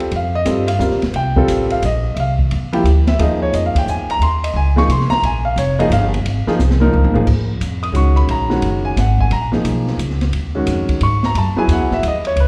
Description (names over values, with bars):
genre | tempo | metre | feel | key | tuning
modal jazz | 176 BPM | 3/4 | swing 65% on 8ths | Eb minor from 7.3 s | A4 = 440 Hz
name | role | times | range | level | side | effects
warm baby grand piano | accompaniment | 0.0-12.5 s | Eb3 to Eb6 | -20 LUFS | equal | none
upright bass | bass | 0.0-12.5 s | F1 to Ab2 | -19 LUFS | equal | none
open jazz drum kit | drums | 0.0-12.5 s | crash cymbal, hi-hat, kick drum, ride cymbal, snare drum, toms | -26 LUFS | equal | none
room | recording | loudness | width
wet recital hall reverb, RT60 1.5 s | recorded in a church or concert hall | -16 LUFS | mono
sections
0.0-7.3 A section; 7.3-12.5 A section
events
drum fill 6.6-7.3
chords
0.0 C13sus4; 3.2 Eb13sus4; 7.3 Ebm11; 11.4 Gbm11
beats
| 0.12 0.46 0.80 | 1.14 1.48 1.82 | 2.17 2.50 2.85 | 3.19 3.53 3.87 | 4.21 4.55 4.89 | 5.23 5.57 5.91 | 6.25 6.59 6.93 | 7.27 7.61 7.95 | 8.29 8.63 8.97 | 9.31 9.65 9.99 | 10.33 10.67 11.01 | 11.35 11.69 12.03 | 12.37